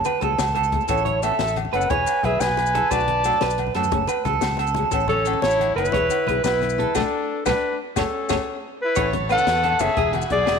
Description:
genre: highlife guitar band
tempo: 119 BPM (dotted quarters)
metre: 12/8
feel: straight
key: A major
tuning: A4 = 439 Hz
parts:
  - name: electric guitar at the edge of break-up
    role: arpeggios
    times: 0.0-10.6 s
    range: F#4 to C#5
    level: -24 LUFS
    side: right 9 dB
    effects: spring reverb, tape echo
  - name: maracas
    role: percussion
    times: 0.0-10.3 s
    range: none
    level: -37 LUFS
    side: left 18 dB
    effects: none
  - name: compact cocktail drum kit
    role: drums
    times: 0.1-10.6 s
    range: hi-hat, kick drum, snare drum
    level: -31 LUFS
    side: left 5 dB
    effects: none
  - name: agogo bells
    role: percussion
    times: 0.1-10.6 s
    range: none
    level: -32 LUFS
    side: left 16 dB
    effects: none
  - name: congas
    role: percussion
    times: 0.1-10.6 s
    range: none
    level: -32 LUFS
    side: left 9 dB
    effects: none
  - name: flamenco guitar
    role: accompaniment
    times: 0.2-10.4 s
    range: E3 to A4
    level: -31 LUFS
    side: left 12 dB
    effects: none
  - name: fingered electric bass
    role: bass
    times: 0.2-10.6 s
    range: E1 to F#2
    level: -28 LUFS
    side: equal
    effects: none
  - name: breathy clarinet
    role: melody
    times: 0.9-10.6 s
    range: A4 to A5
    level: -22 LUFS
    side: equal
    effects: none
  - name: clear trumpet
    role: second line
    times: 0.9-10.6 s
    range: C#4 to D5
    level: -29 LUFS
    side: left 12 dB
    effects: none
  - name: combo organ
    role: sustained chords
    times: 9.0-10.6 s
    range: C#5 to B5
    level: -35 LUFS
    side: left 11 dB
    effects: none
room: moderate echo chamber reverb, RT60 2.2 s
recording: 1960s-style stereo with parts hard left and right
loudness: -19 LUFS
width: side -6 dB against mid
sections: 0.0-9.0 A section; 9.0-10.6 B section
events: band accent 6.9-9.0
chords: 0.0 F#madd9; 0.9 Aadd9; 1.9 E; 2.9 Bm7; 3.9 F#madd9; 4.9 Aadd9; 5.9 E; 6.9 Bm7; 8.0 F#madd9; 9.0 Aadd9; 10.0 E

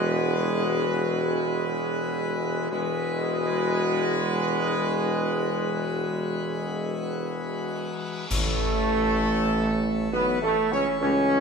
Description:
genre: classical, ceremonial fanfare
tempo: free time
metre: none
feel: none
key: A major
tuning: A4 = 440 Hz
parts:
  - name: clear trumpet section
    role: melody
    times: 0.0-11.4 s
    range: A4 to C#5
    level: -33 LUFS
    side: right 1 dB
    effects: none
  - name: dark French horn section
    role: sustained chords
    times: 0.0-11.4 s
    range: A3 to F#4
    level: -30 LUFS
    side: left 6 dB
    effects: none
  - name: pipe organ, plenum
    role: sustained chords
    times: 0.0-11.4 s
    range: E3 to C#5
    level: -32 LUFS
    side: left 5 dB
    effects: none
  - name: warm trombone section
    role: sustained chords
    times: 0.0-11.4 s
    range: G#3 to C#4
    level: -28 LUFS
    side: right 4 dB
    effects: none
  - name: clear tuba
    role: bass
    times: 0.0-11.4 s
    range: E1 to C#2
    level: -29 LUFS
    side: right 5 dB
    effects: none
  - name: cymbal swell, clash cymbals and concert bass drum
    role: percussion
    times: 5.5-10.1 s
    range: none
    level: -32 LUFS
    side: left 2 dB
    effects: none
room: moderate scoring stage reverb, RT60 2.1 s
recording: none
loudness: -23 LUFS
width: side -5 dB against mid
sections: 0.0-8.3 A section; 8.3-11.4 B section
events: band accent 8.3-9.2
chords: 0.0 Eadd9; 8.3 A

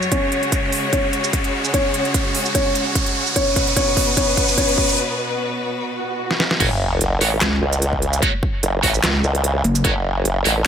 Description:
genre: heavy wobble dubstep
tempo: 148 BPM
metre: 4/4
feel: swing 54% on 16ths, half-time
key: F# minor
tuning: A4 = 440 Hz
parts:
  - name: dark grand piano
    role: melody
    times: 0.0-5.0 s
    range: C#4 to C#5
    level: -22 LUFS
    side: left 1 dB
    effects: low-pass filter, dub echo
  - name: clear symphonic string section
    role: sustained chords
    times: 0.0-6.6 s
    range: B2 to C#5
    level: -24 LUFS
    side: left 1 dB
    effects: sidechain pumping
  - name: dubstep drum kit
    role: drums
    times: 0.0-10.5 s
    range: crash cymbal, handclaps, hi-hat, shaker, snare drum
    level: -22 LUFS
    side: right 2 dB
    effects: small room ambience
  - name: riser, swell and sub drop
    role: sound effects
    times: 0.0-8.2 s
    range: none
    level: -23 LUFS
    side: right 1 dB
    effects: none
  - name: electronic kick drum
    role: drums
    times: 0.1-9.9 s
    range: none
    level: -22 LUFS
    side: equal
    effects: small room ambience
  - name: high-gain distorted guitar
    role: stabs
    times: 6.6-10.5 s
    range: A3 to C#5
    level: -23 LUFS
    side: right 2 dB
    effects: distortion, dub echo
  - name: formant-sweep wobble bass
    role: bass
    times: 6.6-10.6 s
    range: F#1 to C#2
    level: -19 LUFS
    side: equal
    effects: chorus, overdrive
  - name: pulsing pluck wobble bass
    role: bass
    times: 7.4-9.8 s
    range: F#1 to C#2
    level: -18 LUFS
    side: equal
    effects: chorus, overdrive
room: light reverb, digital ambience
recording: none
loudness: -16 LUFS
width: side -8 dB against mid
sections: 0.0-6.6 A section; 6.6-10.7 B section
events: build-up 0.0-6.6; riser 0.0-5.0; drum fill 0.1-5.0, 6.3-6.6; break 5.0-6.6; swell 5.9-6.6; drop 6.6-10.7; impact 6.6-8.2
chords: 0.1 C#sus4; 3.4 B5; 6.6 F#m

